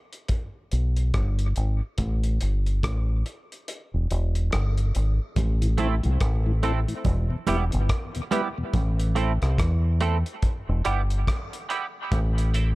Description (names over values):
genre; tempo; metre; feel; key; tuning
dub reggae; 71 BPM; 4/4; swing 60% on 16ths; A minor; A4 = 440 Hz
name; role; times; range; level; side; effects
cloth-damped thuddy drum kit; drums; 0.1-12.8 s; hi-hat, kick drum, rim click; -28 LUFS; equal; none
deep dub fingered electric bass; bass; 0.7-12.8 s; E1 to E2; -23 LUFS; equal; none
congas; percussion; 5.4-9.0 s; none; -33 LUFS; right 6 dB; none
mellow tonewheel organ; accompaniment; 5.6-8.6 s; E2 to E4; -32 LUFS; left 2 dB; slow rotary speaker, dub echo
clean electric guitar; accompaniment; 5.8-12.7 s; G3 to A4; -30 LUFS; right 5 dB; analog chorus, high-pass filter, low-pass filter, dub echo
room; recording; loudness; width
studio reverb; none; -22 LUFS; side -20 dB against mid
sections
0.0-5.4 A section; 5.4-12.8 B section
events
break 0.0-5.4; kick muted 3.7-5.4; part muted 8.7-12.8; filter sweep 8.7-12.8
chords
0.3 G; 2.0 Gsus2; 3.7 Em; 5.4 Am; 7.1 Em; 8.7 Am; 10.4 Em; 12.1 Am